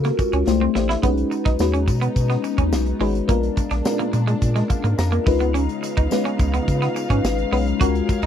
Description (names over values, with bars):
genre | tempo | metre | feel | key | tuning
polished 1980s jazz-funk pop | 106 BPM | 4/4 | straight | unclear | A4 = 442 Hz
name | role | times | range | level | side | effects
FM electric piano with soft pad layer | accompaniment | 0.0-8.3 s | G#3 to A#5 | -22 LUFS | left 4 dB | phaser, wide subtle chorus
electric guitar at the edge of break-up | riff | 0.0-8.3 s | G#3 to F#4 | -26 LUFS | right 4 dB | wide subtle chorus
round analog bass | bass | 0.0-8.3 s | G#1 to C#3 | -22 LUFS | equal | none
modern studio drum kit | drums | 0.0-8.3 s | hi-hat, kick drum, snare drum | -24 LUFS | equal | none
tambourine | percussion | 0.2-8.2 s | none | -41 LUFS | left 11 dB | none
dark studio string section | sustained chords | 1.0-8.3 s | A#2 to E#5 | -31 LUFS | left 1 dB | none
room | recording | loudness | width
little or no reverb | dry, close 1970s-style studio recording | -18 LUFS | side -9 dB against mid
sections
0.0-8.3 A section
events
drum fill 0.5-1.0; FM electric piano fill 4.4-5.5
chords
0.5 C69; 1.0 B69; 3.3 A#7b9; 5.3 C#9